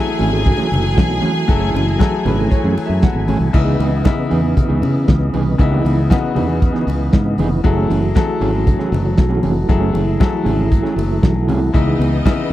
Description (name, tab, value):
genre	disco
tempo	117 BPM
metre	4/4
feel	straight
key	C# minor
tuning	A4 = 438 Hz
part	clear studio string section	second line	0.0-3.3, 11.7-12.5 s	D#4 to G#5	-25 LUFS	equal	none
part	bright baby grand piano	accompaniment	0.0-12.5 s	C#3 to G#5	-22 LUFS	left 6 dB	none
part	percussive tonewheel organ	sustained chords	0.0-12.5 s	C#3 to G#5	-22 LUFS	right 1 dB	chorus vibrato, fast rotary speaker
part	mellow electric guitar	accompaniment	0.1-12.4 s	E3 to G#4	-22 LUFS	right 4 dB	none
part	fingered electric bass	bass	0.2-12.5 s	E#1 to C#3	-18 LUFS	equal	none
part	warm soul drum kit	drums	0.2-12.4 s	crash cymbal, hi-hat, kick drum, snare drum	-15 LUFS	equal	none
part	congas	percussion	0.5-12.4 s	none	-25 LUFS	left 4 dB	none
room	little or no reverb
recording	dry, close 1970s-style studio recording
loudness	-13 LUFS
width	side -14 dB against mid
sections	0.0-3.5 A section; 3.5-12.5 A section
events	grand piano fill 2.0-3.5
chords	0.0 F#m9; 3.5 C#m9; 7.6 F#m9; 11.7 C#m9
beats	0.46 0.98 | 1.49 2.00 2.52 3.03 | 3.54 4.06 4.57 5.08 | 5.60 6.11 6.62 7.13 | 7.65 8.16 8.67 9.18 | 9.70 10.21 10.72 11.23 | 11.74 12.25